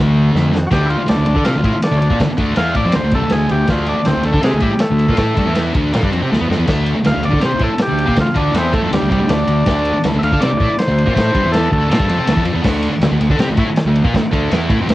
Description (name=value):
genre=garage rock duo or trio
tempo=161 BPM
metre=4/4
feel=straight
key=D minor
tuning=A4 = 441 Hz
part: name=thick fuzz guitar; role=riff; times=0.0-14.9 s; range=C3 to A4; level=-17 LUFS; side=equal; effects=distortion, cassette tape
part: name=fuzz fingered electric bass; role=bass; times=0.0-14.9 s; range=C2 to D3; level=-19 LUFS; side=equal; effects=overdrive
part: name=vintage drum kit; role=drums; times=0.4-14.9 s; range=crash cymbal, kick drum, ride cymbal, snare drum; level=-19 LUFS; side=equal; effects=none
part: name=combo organ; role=melody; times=0.7-12.4 s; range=G3 to F5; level=-20 LUFS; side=equal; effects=spring reverb, cassette tape
room=moderate booth ambience, RT60 0.2 s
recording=home recording on cassette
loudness=-13 LUFS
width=side -16 dB against mid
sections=0.7-12.7 A section; 12.7-14.9 B section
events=drum fill 0.3-0.7, 6.3-6.7; transistor combo organ solo 0.7-12.7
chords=0.0 Dm; 12.7 D5